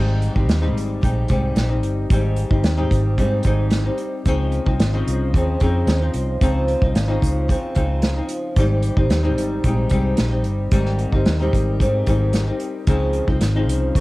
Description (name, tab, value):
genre	indie pop, bedroom pop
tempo	111 BPM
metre	4/4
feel	straight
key	Ab major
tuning	A4 = 440 Hz
part	flamenco guitar	accompaniment	0.0-14.0 s	Ab2 to Eb4	-22 LUFS	left 1 dB	lush chorus, warbly pitch drift, cassette tape
part	dark French horn section	sustained chords	0.0-14.0 s	Db3 to F5	-33 LUFS	equal	cassette tape
part	vintage muted fingered electric bass	bass	0.0-14.0 s	G1 to Ab2	-20 LUFS	equal	none
part	unplugged drum kit	drums	0.2-14.0 s	hi-hat, kick drum, snare drum	-20 LUFS	equal	cassette tape
room	little or no reverb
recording	home recording on cassette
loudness	-17 LUFS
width	side -19 dB against mid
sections	0.0-14.0 A section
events	none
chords	0.0 Abmaj7; 4.3 Dbmaj9; 8.6 Abmaj7; 12.9 Dbmaj9